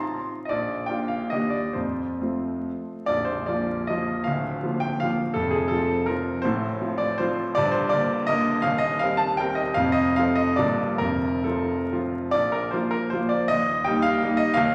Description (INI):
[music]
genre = classical, romantic triple-time dance for piano with dotted rhythms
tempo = 126-177 BPM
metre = 3/4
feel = rubato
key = Bb major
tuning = A4 = 440 Hz
[part]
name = clear grand piano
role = solo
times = 0.0-14.7 s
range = Bb0 to C6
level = -24 LUFS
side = equal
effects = none
[sound]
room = wet recital hall reverb, RT60 1.6 s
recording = vinyl crackle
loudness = -25 LUFS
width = mono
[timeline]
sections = 0.0-3.1 A section; 3.1-12.3 B section; 12.3-14.7 C section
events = none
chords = 0.0 F7/A; 0.5 Bb; 1.3 Ebmaj7; 1.8 F; 3.1 Bb; 4.3 Bb/D; 5.4 F; 6.4 F/A; 7.6 Gm; 8.6 Cm7/Eb; 9.8 F; 10.6 Gm7; 11.0 F; 12.3 Bb5; 13.5 Eb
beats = 0.15 | 0.52 0.90 1.31 | 1.75 2.21 2.66 | 3.08 3.48 3.88 | 4.26 4.63 5.00 | 5.35 5.71 6.09 | 6.45 6.82 7.21 | 7.58 7.93 8.30 | 8.65 9.01 9.40 | 9.77 10.17 10.59 | 11.01 11.46 11.92 | 12.34 12.73 13.13 | 13.50 13.88 14.24 | 14.58